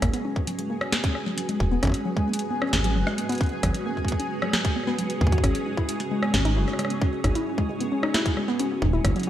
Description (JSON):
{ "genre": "IDM", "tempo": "133 BPM", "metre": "4/4", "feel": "straight", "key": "unclear", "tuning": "A4 = 441 Hz", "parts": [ { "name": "granular cloud pad", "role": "sustained chords", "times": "0.0-9.3 s", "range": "G#3 to B4", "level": "-31 LUFS", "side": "equal", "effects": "built-in reverb, ensemble chorus" }, { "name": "warbly dusty pluck", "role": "arpeggios", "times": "0.0-9.3 s", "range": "F#3 to F#4", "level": "-28 LUFS", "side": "left 1 dB", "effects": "chorus, digital delay" }, { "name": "dark detuned saw bass", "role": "bass", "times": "0.0-9.1 s", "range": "D#1 to D#2", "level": "-25 LUFS", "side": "equal", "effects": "tube saturation" }, { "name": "booming analog drum machine", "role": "drums", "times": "0.0-9.3 s", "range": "hi-hat, rim click, snare drum", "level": "-28 LUFS", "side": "equal", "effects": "gated reverb, digital delay" }, { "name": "electronic kick drum", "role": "drums", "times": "0.0-9.1 s", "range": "none", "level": "-25 LUFS", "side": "equal", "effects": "none" }, { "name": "pulsing gated texture", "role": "texture", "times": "0.0-9.3 s", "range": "G#4 to G#5", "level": "-35 LUFS", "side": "right 1 dB", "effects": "chorus, built-in reverb" } ], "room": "wet lush hall reverb, RT60 1.9 s, digital ambience", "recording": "bright 1980s-style digital production", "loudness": "-22 LUFS", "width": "side -11 dB against mid", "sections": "0.0-9.3 A section", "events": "filter sweep on synth arpeggio sound 0.0-9.3", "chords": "0.0 G#m11; 5.4 C#m9", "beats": "| 0.02 0.47 0.93 1.38 | 1.83 2.28 2.73 3.18 | 3.63 4.08 4.54 4.99 | 5.44 5.89 6.34 6.79 | 7.24 7.69 8.14 8.60 | 9.05" }